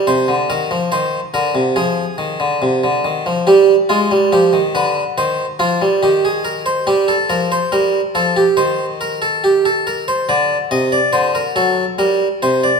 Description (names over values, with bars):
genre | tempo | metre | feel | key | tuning
classical, baroque-style two-part invention for harpsichord | 70 BPM | 4/4 | straight | C minor | A4 = 439 Hz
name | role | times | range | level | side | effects
harpsichord | solo | 0.0-12.8 s | C3 to Eb5 | -13 LUFS | right 1 dB | none
room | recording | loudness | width
moderate recital hall reverb, RT60 1.7 s | minimal, uncompressed stereo recording | -13 LUFS | side -5 dB against mid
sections
0.0-12.8 A section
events
none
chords
0.1 Cm; 1.8 Fm; 3.5 G7; 5.2 Cm/Eb; 6.9 Gm; 8.6 Cm/Eb; 10.3 D7; 12.0 Gm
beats
| 0.09 0.93 1.78 2.63 | 3.48 4.33 5.18 6.04 | 6.89 7.74 8.60 9.45 | 10.30 11.15 12.01